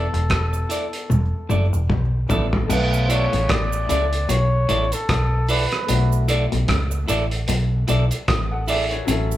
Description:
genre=lovers rock reggae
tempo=75 BPM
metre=4/4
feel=swing 58% on 16ths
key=unclear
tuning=A4 = 441 Hz
part: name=warm flugelhorn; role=melody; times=0.0-6.3 s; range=A4 to D5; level=-26 LUFS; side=equal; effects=none
part: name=warm baby grand piano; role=accompaniment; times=0.0-9.4 s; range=F#3 to F#5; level=-30 LUFS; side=left 2 dB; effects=none
part: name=clean electric guitar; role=stabs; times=0.0-8.8 s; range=E4 to D5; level=-25 LUFS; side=right 1 dB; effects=none
part: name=vintage muted fingered electric bass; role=bass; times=0.0-9.4 s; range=E1 to C#2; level=-21 LUFS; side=equal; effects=none
part: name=twangy electric guitar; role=riff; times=0.1-9.3 s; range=E2 to C#3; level=-31 LUFS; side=left 5 dB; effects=dub echo
part: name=cloth-damped thuddy drum kit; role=drums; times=0.1-9.3 s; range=crash cymbal, hi-hat, kick drum, rim click, toms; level=-24 LUFS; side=right 1 dB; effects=none
part: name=cabasa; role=percussion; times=0.5-9.4 s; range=none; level=-36 LUFS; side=right 8 dB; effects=none
room=moderate large studio reverb, RT60 0.9 s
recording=band playing live in one room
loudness=-18 LUFS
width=side -14 dB against mid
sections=0.0-2.7 A section; 2.7-9.4 B section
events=drum fill 1.1-2.7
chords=0.0 E7sus4; 2.7 Bm11

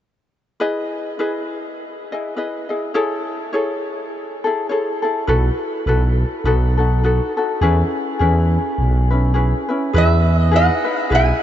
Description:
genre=Hawaiian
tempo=103 BPM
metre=4/4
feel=swing 57% on 8ths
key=E major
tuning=A4 = 440 Hz
part: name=ukulele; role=accompaniment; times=0.6-11.4 s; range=C#4 to D#5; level=-20 LUFS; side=left 2 dB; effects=none
part: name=growling FM bass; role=bass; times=5.3-11.3 s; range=B1 to E2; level=-16 LUFS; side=right 1 dB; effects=none
part: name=lap resonator guitar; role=melody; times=10.0-11.4 s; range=B4 to G#5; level=-17 LUFS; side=right 2 dB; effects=diffuse ambient delay
room=moderate huge ambient reverb, RT60 7.6 s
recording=dreamy mix soaked in reverb, nothing above 7.9 kHz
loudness=-16 LUFS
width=side -11 dB against mid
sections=0.6-9.9 A section; 9.9-11.4 B section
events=none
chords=0.6 Emaj7; 3.0 Amaj7; 5.3 B7sus4; 6.5 B7; 7.6 E6; 9.9 Emaj7

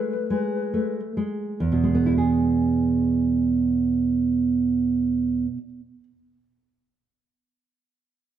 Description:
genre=romantic duo for flute and classical guitar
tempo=48 BPM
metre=4/4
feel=rubato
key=E major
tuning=A4 = 440 Hz
part: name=hollow concert flute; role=melody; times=0.0-0.9 s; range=B4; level=-30 LUFS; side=left 10 dB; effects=none
part: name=nylon-string guitar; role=accompaniment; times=0.0-6.0 s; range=E2 to E5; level=-21 LUFS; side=right 3 dB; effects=none
room=moderate recital hall reverb, RT60 1.6 s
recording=none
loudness=-20 LUFS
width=side -10 dB against mid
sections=0.0-1.6 A section; 1.6-6.6 B section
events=slowing down 0.0-1.6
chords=0.0 E

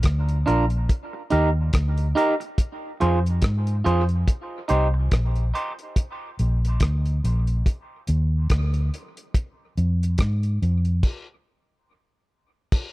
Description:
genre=dub reggae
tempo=71 BPM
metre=4/4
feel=swing 60% on 16ths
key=F dorian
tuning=A4 = 438 Hz
part: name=vintage muted fingered electric bass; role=bass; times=0.0-11.0 s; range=Bb1 to Ab2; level=-21 LUFS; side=equal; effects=none
part: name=cloth-damped thuddy drum kit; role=drums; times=0.0-12.9 s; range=crash cymbal, hi-hat, kick drum, rim click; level=-22 LUFS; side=equal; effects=none
part: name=clean electric guitar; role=accompaniment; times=0.5-5.7 s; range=D4 to C5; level=-25 LUFS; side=right 2 dB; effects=high-pass filter, dub echo
room=little or no reverb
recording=dry, close 1970s-style studio recording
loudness=-20 LUFS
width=side -19 dB against mid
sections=0.0-12.7 A section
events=break 6.0-12.7; stop 11.0-12.7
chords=0.0 Bb; 0.9 Eb; 2.6 Fm; 4.3 Cm; 6.0 Bb; 7.7 N.C.; 9.3 Fm; 11.0 N.C.

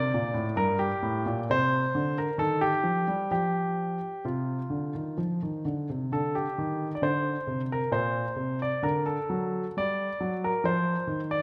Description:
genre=classical, baroque-style suite movement for grand piano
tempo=65 BPM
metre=3/4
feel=uneven beats, rubato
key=unclear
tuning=A4 = 440 Hz
part: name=warm concert grand piano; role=solo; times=0.0-11.4 s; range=G2 to D5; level=-29 LUFS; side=equal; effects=none
room=moderate scoring stage reverb, RT60 1.8 s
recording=none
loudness=-29 LUFS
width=mono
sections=0.0-11.4 A section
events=none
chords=0.0 Bb; 0.5 Gm; 2.4 Ebadd9; 3.3 F5; 6.1 Cm69; 7.9 Bbadd9; 8.8 D; 10.6 Cmadd11

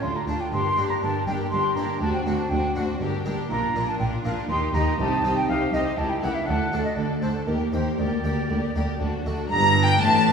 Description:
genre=classical, baroque-style concerto movement with solo episodes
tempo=121 BPM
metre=3/4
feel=straight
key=G minor from 3.5 s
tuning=A4 = 440 Hz
part: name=concert flute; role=melody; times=0.0-10.3 s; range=Bb4 to C6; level=-26 LUFS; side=equal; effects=none
part: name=rich chamber violin section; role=melody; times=0.0-10.3 s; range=A4 to Bb5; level=-33 LUFS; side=left 4 dB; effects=none
part: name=rich chamber violin section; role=second line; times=0.0-10.3 s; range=F4 to Bb5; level=-31 LUFS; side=left 2 dB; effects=none
part: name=harpsichord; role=accompaniment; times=0.0-10.3 s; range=C2 to Bb4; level=-31 LUFS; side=equal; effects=none
part: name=rich chamber viola section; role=accompaniment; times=0.0-10.3 s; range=Bb3 to E4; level=-31 LUFS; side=left 1 dB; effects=none
part: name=clear chamber double bass section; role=bass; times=0.0-10.3 s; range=G1 to Eb2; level=-29 LUFS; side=right 2 dB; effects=none
part: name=rich chamber cello section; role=bass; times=0.0-10.3 s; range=C2 to Bb2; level=-28 LUFS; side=right 1 dB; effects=none
room=wet scoring stage reverb, RT60 1.9 s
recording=heard from further back in the room, small room ambience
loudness=-21 LUFS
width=side -6 dB against mid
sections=0.0-9.5 A section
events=none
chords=0.0 Dm; 0.5 Gm; 2.0 D7; 3.0 Gm; 3.5 Bb; 4.5 Eb; 5.0 Cm; 6.0 C#dim7; 6.5 D5; 7.5 Eb; 8.0 Gm/D; 9.0 D; 9.5 Gm

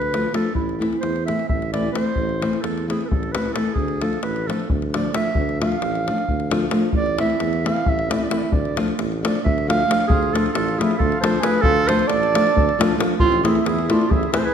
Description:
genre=balkan folk, Balkan wedding band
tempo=266 BPM (eighths)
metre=7/8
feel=straight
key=D dorian sharp4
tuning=A4 = 440 Hz
part: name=mellow clarinet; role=melody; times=0.0-14.5 s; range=E4 to F5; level=-23 LUFS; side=right 4 dB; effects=none
part: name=warm tuba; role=bass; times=0.0-14.2 s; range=A1 to E2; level=-27 LUFS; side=equal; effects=none
part: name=davul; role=percussion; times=0.0-14.4 s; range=none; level=-24 LUFS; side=left 2 dB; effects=none
part: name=nylon-string guitar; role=accompaniment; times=0.1-14.5 s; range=E3 to F4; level=-23 LUFS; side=left 1 dB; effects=none
part: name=mellow accordion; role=second line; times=10.1-14.5 s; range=C4 to A4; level=-27 LUFS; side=left 2 dB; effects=none
room=wet recital hall reverb, RT60 1.5 s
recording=none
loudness=-18 LUFS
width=side -8 dB against mid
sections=0.0-10.1 A section; 10.1-14.5 B section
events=speeding up 0.0-14.5; clarinet solo 0.0-10.1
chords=0.0 Dm; 0.5 Am; 3.8 Dm; 6.9 Am; 8.5 Dm; 13.2 Am

